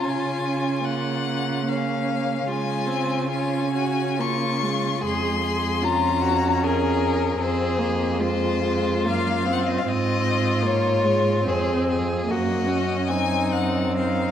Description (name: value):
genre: classical, slow romantic movement for string quartet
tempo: 62-78 BPM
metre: 3/4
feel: rubato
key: unclear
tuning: A4 = 440 Hz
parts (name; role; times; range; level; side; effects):
- rich violin; melody; 0.0-14.3 s; Bb4 to Db6; -26 LUFS; left 7 dB; none
- rich violin; second line; 0.0-14.3 s; Db4 to Ab4; -28 LUFS; left 2 dB; none
- warm viola; accompaniment; 0.0-14.3 s; Ab3 to Db4; -26 LUFS; right 2 dB; none
- rich cello; bass; 0.0-14.3 s; F2 to Db3; -26 LUFS; right 3 dB; none
room: wet concert hall reverb, RT60 2.1 s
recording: none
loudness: -20 LUFS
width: side -9 dB against mid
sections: 0.0-14.3 A section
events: none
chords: 0.0 Bbm/Db; 2.5 Db; 5.0 Db/F; 7.4 Fm; 9.9 Fm/Ab; 12.3 Ebm/Gb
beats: | 0.03 0.85 1.68 | 2.48 3.29 4.20 | 5.02 5.82 6.62 | 7.40 8.20 9.06 | 9.87 10.65 11.47 | 12.28 13.10 13.99